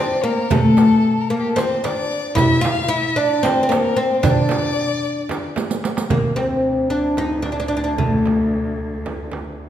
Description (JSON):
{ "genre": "Turkish makam ensemble", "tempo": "225 BPM (eighths)", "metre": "7/8", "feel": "straight", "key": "D makam ussak", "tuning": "A4 = 440 Hz", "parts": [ { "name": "oud", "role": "melody", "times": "0.0-9.6 s", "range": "A3 to F4", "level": "-18 LUFS", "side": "left 1 dB", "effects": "none" }, { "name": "rich violin", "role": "second line", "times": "0.0-5.5 s", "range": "G4 to F5", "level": "-24 LUFS", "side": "left 5 dB", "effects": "none" }, { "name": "riq", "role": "percussion", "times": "0.2-6.1 s", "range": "none", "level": "-29 LUFS", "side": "right 4 dB", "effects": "none" }, { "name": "darbuka", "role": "percussion", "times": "0.5-9.5 s", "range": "none", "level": "-25 LUFS", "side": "right 3 dB", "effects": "none" }, { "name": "frame drum", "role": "percussion", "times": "0.5-9.4 s", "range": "none", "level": "-26 LUFS", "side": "right 3 dB", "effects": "none" }, { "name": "rich cello", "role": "drone", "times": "6.1-9.7 s", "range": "D2", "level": "-28 LUFS", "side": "equal", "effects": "none" } ], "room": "wet recital hall reverb, RT60 1.7 s", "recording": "minimal, uncompressed stereo recording", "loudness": "-16 LUFS", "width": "side -10 dB against mid", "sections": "0.0-6.1 A section; 6.1-9.7 B section", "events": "drum fill 5.6-6.1", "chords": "none" }